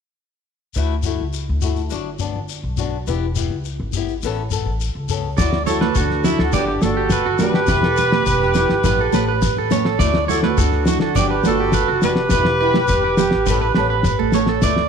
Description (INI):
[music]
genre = highlife guitar band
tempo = 104 BPM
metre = 4/4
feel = straight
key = D major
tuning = A4 = 439 Hz
[part]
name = shekere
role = percussion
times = 0.7-14.8 s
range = none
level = -27 LUFS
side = left 7 dB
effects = none
[part]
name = picked old ladder-braced acoustic guitar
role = accompaniment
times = 0.8-14.8 s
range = E3 to A4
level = -26 LUFS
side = left 11 dB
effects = none
[part]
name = upright bass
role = bass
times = 0.8-14.9 s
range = E1 to D2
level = -23 LUFS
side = left 1 dB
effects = none
[part]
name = electric guitar at the edge of break-up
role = arpeggios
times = 5.4-14.9 s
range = E4 to D5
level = -21 LUFS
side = right 9 dB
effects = slapback echo
[part]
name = cloth-damped thuddy drum kit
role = drums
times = 5.4-14.9 s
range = kick drum, snare drum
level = -22 LUFS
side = left 2 dB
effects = none
[part]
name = clear horn section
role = melody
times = 5.7-14.3 s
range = D4 to B4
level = -21 LUFS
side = equal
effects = none
[part]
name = congas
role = percussion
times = 5.7-14.5 s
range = none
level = -25 LUFS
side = right 13 dB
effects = none
[sound]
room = moderate echo chamber reverb, RT60 2.3 s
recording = 1960s-style stereo with parts hard left and right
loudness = -16 LUFS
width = side -6 dB against mid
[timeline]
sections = 0.8-5.4 A section; 5.4-14.9 B section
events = none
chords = 0.8 Dadd9; 1.9 Gmaj7; 3.1 Em; 4.2 Aadd9; 5.4 Dadd9; 6.5 Gmaj7; 7.7 Em; 8.9 Aadd9; 10.0 Dadd9; 11.2 Gmaj7; 12.3 Em; 13.5 Aadd9